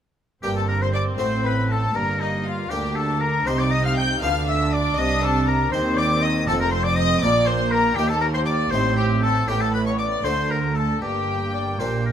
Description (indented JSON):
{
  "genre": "classical, baroque-style concerto movement with solo episodes",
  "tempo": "79 BPM (dotted quarters)",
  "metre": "6/8",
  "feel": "straight",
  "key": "G minor",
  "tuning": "A4 = 440 Hz",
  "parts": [
    { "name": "warm chamber violin section", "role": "melody", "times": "0.4-12.1 s", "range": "Eb5 to G6", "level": "-28 LUFS", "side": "left 5 dB", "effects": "none" },
    { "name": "warm oboe", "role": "melody", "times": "0.4-12.1 s", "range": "Eb4 to G5", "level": "-26 LUFS", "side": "left 2 dB", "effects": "none" },
    { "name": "warm chamber violin section", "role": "second line", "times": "0.4-12.1 s", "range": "Eb4 to G5", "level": "-28 LUFS", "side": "left 2 dB", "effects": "none" },
    { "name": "harpsichord", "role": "accompaniment", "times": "0.4-12.1 s", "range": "D2 to B4", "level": "-32 LUFS", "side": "equal", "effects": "none" },
    { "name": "rich studio viola section", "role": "accompaniment", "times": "0.4-12.1 s", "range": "A3 to Eb4", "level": "-29 LUFS", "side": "right 1 dB", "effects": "none" },
    { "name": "dark chamber cello section", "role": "bass", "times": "0.4-12.1 s", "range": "D2 to Eb3", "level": "-27 LUFS", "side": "right 3 dB", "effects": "none" },
    { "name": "rich chamber double bass section", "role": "bass", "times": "0.4-12.1 s", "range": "F1 to Eb2", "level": "-26 LUFS", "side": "right 2 dB", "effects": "none" }
  ],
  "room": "moderate recital hall reverb, RT60 1.5 s",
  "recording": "close, detailed microphones",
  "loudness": "-19 LUFS",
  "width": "side -9 dB against mid",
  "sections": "0.4-12.1 A section",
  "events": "none",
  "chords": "0.4 Gm; 1.2 F#dim/A; 2.0 Gm; 3.5 Cm; 4.2 Bdim/D; 5.0 Cm; 6.5 F; 7.2 Bb5; 8.0 Eb; 8.7 Am7b5; 9.5 A; 10.2 D; 11.0 Gm"
}